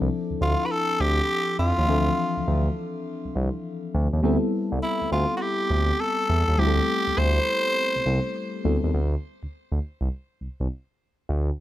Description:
R&B, new jack swing; 102 BPM; 4/4; swing 65% on 16ths; D dorian; A4 = 440 Hz
mellow FM electric piano; accompaniment; 0.0-9.0 s; E3 to E5; -28 LUFS; left 2 dB; chorus
smooth synth bass; bass; 0.0-11.5 s; C2 to F2; -24 LUFS; equal
raspy tenor saxophone; melody; 0.4-8.6 s; E4 to C5; -25 LUFS; equal; digital delay
studio reverb; -22 LUFS; side -14 dB against mid
0.0-8.9 A section; 8.9-11.6 B section
0.0 Dm9; 4.2 Am9; 8.9 D7(no3)

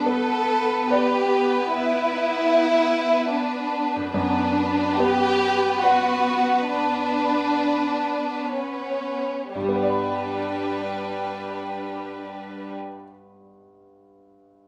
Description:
cinematic; 57-76 BPM; 3/4; rubato; G major; A4 = 442 Hz
clear concert grand piano; accompaniment; 0.0-14.7 s; F#2 to B5; -30 LUFS; equal
rich symphonic viola section; accompaniment; 0.0-12.7 s; B3 to B4; -29 LUFS; equal
concert harp; arpeggios; 0.0-13.4 s; F#2 to B5; -44 LUFS; equal
warm symphonic violin section; second line; 0.1-12.7 s; G3 to A4; -25 LUFS; equal
wet stone room reverb, RT60 1.0 s; -23 LUFS; mono
0.0-9.5 A section; 9.5-12.5 B section
slowing down 2.9-9.5
0.0 G; 4.1 Bm/F#; 9.5 G

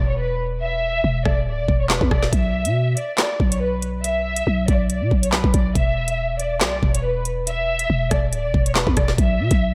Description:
hip hop, drill; 140 BPM; 4/4; half-time; A4 = 440 Hz
warm studio violin section; melody; 0.0-9.7 s; B4 to E5; -26 LUFS; equal; low-pass filter, tape echo
growling 808-style bass; bass; 0.0-9.7 s; D1 to B2; -25 LUFS; equal
drill drum kit; drums; 1.3-9.6 s; handclaps, hi-hat, kick drum, rim click, snare drum; -22 LUFS; equal
moderate plate reverb, RT60 1.4 s; dreamy mix soaked in reverb; -20 LUFS; mono
0.0-9.2 A section
break 0.0-2.3
0.0 E5; 2.3 Bmadd11; 5.8 E5; 9.2 B5

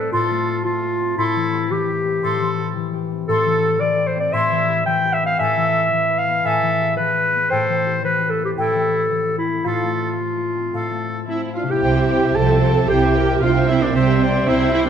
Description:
cinematic, heroic adventure film score; 113 BPM; 4/4; straight; A minor, C major from 11.8 s; A4 = 440 Hz
clear clarinet; second line; 0.0-14.9 s; E4 to G5; -20 LUFS; equal
concert harp; arpeggios; 0.0-14.9 s; A2 to G#5; -25 LUFS; left 9 dB
clear oboe; second line; 0.1-14.9 s; E4 to A5; -27 LUFS; right 2 dB
flute section; second line; 0.1-11.0 s; F5 to C6; -27 LUFS; equal
warm studio viola section; accompaniment; 11.3-14.9 s; C4 to A4; -20 LUFS; right 2 dB
dark French horn section; sustained chords; 11.3-14.9 s; F3 to E4; -24 LUFS; left 1 dB
dark symphonic violin section; melody; 11.8-14.9 s; E5 to G5; -29 LUFS; left 4 dB
warm studio violin section; second line; 11.8-14.9 s; G4 to C5; -27 LUFS; left 2 dB
warm symphonic cello section; bass; 11.8-14.9 s; C3; -22 LUFS; right 5 dB
warm symphonic double bass section; bass; 11.8-14.9 s; C2; -21 LUFS; right 5 dB
moderate scoring stage reverb, RT60 1.8 s; nothing above 11.0 kHz; -16 LUFS; side -8 dB against mid
0.0-11.8 A section; 11.8-14.9 B section
0.0 F/A; 1.2 Am7; 5.4 E/A; 7.5 Am7; 9.7 F/A; 11.8 C

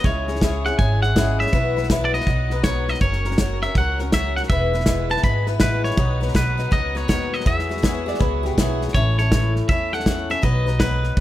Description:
honky-tonk and classic country; 162 BPM; 4/4; swing 64% on 8ths; E major; A4 = 441 Hz
twangy electric guitar; melody; 0.0-11.2 s; B4 to B5; -25 LUFS; equal
picked swing-style acoustic guitar; accompaniment; 0.0-11.2 s; A2 to B4; -26 LUFS; left 4 dB
muted studio violin section; sustained chords; 0.0-8.9 s; B3 to F#5; -35 LUFS; equal
upright bass; bass; 0.0-11.2 s; E1 to E2; -23 LUFS; equal
natural country drum kit; drums; 0.0-11.2 s; hi-hat, kick drum, snare drum; -21 LUFS; equal
electric guitar through a small old amp; second line; 8.1-8.8 s; E4 to D5; -29 LUFS; right 4 dB; tape echo
little or no reverb; -18 LUFS; side -14 dB against mid
0.0-8.9 A section; 8.9-11.2 B section
0.0 C#m; 1.5 Bsus4; 2.3 B; 3.0 F#; 4.5 E; 6.0 B; 7.5 Eadd9; 8.9 A; 10.4 B

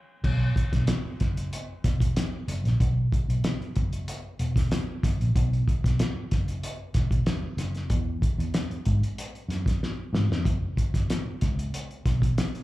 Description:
funk; 94 BPM; 4/4; straight; A4 = 440 Hz
fingered electric bass; bass; 0.2-12.3 s; E1 to G#2; -26 LUFS; equal
cloth-damped thuddy drum kit; drums; 0.2-12.6 s; crash cymbal, hi-hat, kick drum, snare drum; -26 LUFS; equal
little or no reverb; live gig heard through the venue's PA, club reverb; -24 LUFS; side -17 dB against mid
0.2-10.5 A section; 10.5-12.6 B section
break 0.0; band accent 0.0; drum fill 9.8-10.5

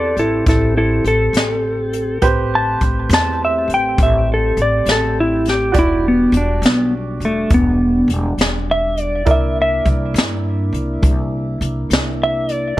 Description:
slow blues; 68 BPM (dotted quarters); 12/8; straight; A4 = 439 Hz
clean lap steel guitar; melody; 0.0-12.8 s; A3 to A5; -16 LUFS; equal
clear upright piano; accompaniment; 0.0-12.8 s; E4 to D5; -25 LUFS; right 5 dB
mellow tonewheel organ; sustained chords; 0.0-12.8 s; G3 to G4; -25 LUFS; left 1 dB; slow rotary speaker
upright bass; bass; 0.0-12.7 s; E1 to G2; -21 LUFS; equal
jazz brush drum kit; drums; 0.2-12.6 s; hi-hat, kick drum, snare drum; -18 LUFS; equal
light reverb; -14 LUFS; side -16 dB against mid
0.0-12.8 A section
electric slide guitar solo 0.0-12.8
0.0 Am7; 5.7 Em7; 9.3 C7

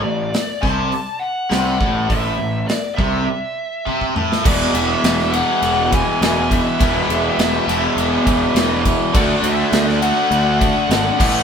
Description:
hard rock; 102 BPM; 4/4; straight; E mixolydian; A4 = 440 Hz
bluesy overdriven lead guitar; melody; 0.0-11.4 s; D5 to A5; -22 LUFS; left 1 dB; distortion
cranked stack guitar; riff; 0.0-11.4 s; E2 to D4; -23 LUFS; left 4 dB; overdrive, phaser
high-gain distorted guitar; riff; 0.0-11.4 s; E2 to D4; -23 LUFS; right 3 dB; distortion
fuzz picked electric bass; bass; 0.0-11.4 s; E1 to D2; -22 LUFS; right 1 dB; overdrive
big rock drum kit; drums; 0.3-11.3 s; crash cymbal, hi-hat, kick drum, ride cymbal, snare drum, toms; -20 LUFS; equal
overdriven electric guitar; riff; 4.4-11.4 s; A2 to F#4; -24 LUFS; equal
wet stone room reverb, RT60 1.0 s; band playing live in one room; -15 LUFS; side -7 dB against mid
0.0-4.5 A section; 4.5-11.4 B section
drum fill 3.9-4.5
0.0 A5; 4.5 E; 9.1 D

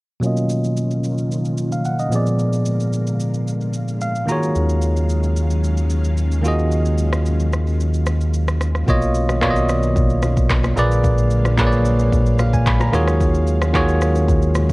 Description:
amapiano; 111 BPM; 4/4; straight; Eb minor; A4 = 440 Hz
bell-like tine electric piano; accompaniment; 0.2-14.7 s; Bb2 to Cb6; -19 LUFS; equal; low-pass filter
string machine, cellos; sustained chords; 0.2-14.7 s; D3 to F5; -28 LUFS; left 1 dB; ensemble chorus, sidechain pumping, low-pass filter
afro-pop drum kit; drums; 0.2-14.7 s; handclaps, kick drum, rim click, shaker; -22 LUFS; equal; vintage 12-bit sampler grit
round analog bass; bass; 4.6-14.7 s; Bb1 to Eb2; -19 LUFS; equal
congas and bongos; percussion; 8.9-14.7 s; -31 LUFS; left 4 dB
light reverb; worn, warbling old tape, cassette tape, warbly pitch drift; -16 LUFS; side -22 dB against mid
0.2-8.9 A section; 8.9-14.7 B section
filter sweep 0.2-8.9; tine electric piano fill 3.7-4.6
0.2 Bmaj9#11; 2.1 Bb7b9; 4.3 Ebm11; 8.9 Bmaj9#11; 10.8 Bb7b9; 12.9 Ebm11

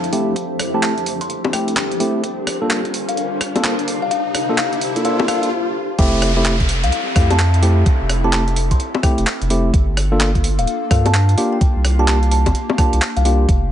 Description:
UK garage, two-step garage; 128 BPM; 4/4; swing 63% on 16ths; F major; A4 = 440 Hz
airy breathy pad; sustained chords; 0.0-13.7 s; C3 to Bb4; -29 LUFS; equal; chorus, sidechain pumping
breakbeat sampler-style drum kit; drums; 0.0-13.6 s; bongos, handclaps, hi-hat, rim click; -22 LUFS; left 1 dB
riser and downlifter; sound effects; 1.1-9.7 s; -27 LUFS; equal
granular cloud pad; texture; 0.0-13.5 s; F3 to F5; -28 LUFS; left 1 dB; built-in reverb, sidechain pumping
bright tine electric piano; stabs; 0.1-13.5 s; A3 to A4; -22 LUFS; equal; low-pass filter, tape echo
electronic kick drum; drums; 0.4-13.6 s; -16 LUFS; equal; overdrive, high-pass filter on kick
kalimba; melody; 0.7-13.3 s; F5 to C6; -24 LUFS; left 2 dB; low-pass filter, tape echo
saturated sub bass; bass; 6.0-13.7 s; D1 to G2; -16 LUFS; equal
light reverb, digital ambience; nothing above 10.6 kHz; -15 LUFS; side -10 dB against mid
0.0-6.0 A section; 6.0-13.7 B section
build-up 0.0-6.0; filter sweep on tine electric piano 0.0-6.0; filter sweep on kalimba 0.0-6.0; filter sweep on analog synth pad 0.0-6.0; riser 1.1-5.5; stop 5.5-6.0; drop 6.0-13.7
0.0 Fmaj7; 2.2 Gm7; 3.9 C7sus4; 6.0 Fmaj7; 9.7 Gm7; 11.4 C7sus4

